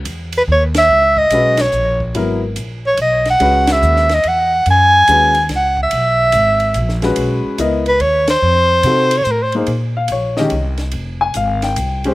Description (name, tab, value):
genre	modal jazz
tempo	144 BPM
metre	3/4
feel	swing 66% on 8ths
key	C# dorian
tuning	A4 = 440 Hz
part	upright bass	bass	0.0-12.1 s	F1 to C3	-19 LUFS	equal	none
part	compact cocktail drum kit	drums	0.1-12.1 s	hi-hat, kick drum, ride cymbal, snare drum	-26 LUFS	equal	none
part	breathy soprano saxophone	melody	0.4-9.5 s	A#4 to G#5	-12 LUFS	right 1 dB	slapback echo
part	warm grand piano	accompaniment	1.3-12.1 s	Eb3 to Ab5	-18 LUFS	left 3 dB	none
room	little or no reverb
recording	recorded outdoors, with no room sound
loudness	-12 LUFS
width	side -18 dB against mid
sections	0.0-9.7 A section; 9.7-12.1 B section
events	band accent 0.7, 3.6, 8.2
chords	0.0 C#9sus4; 8.4 F7b9; 9.7 Bbm11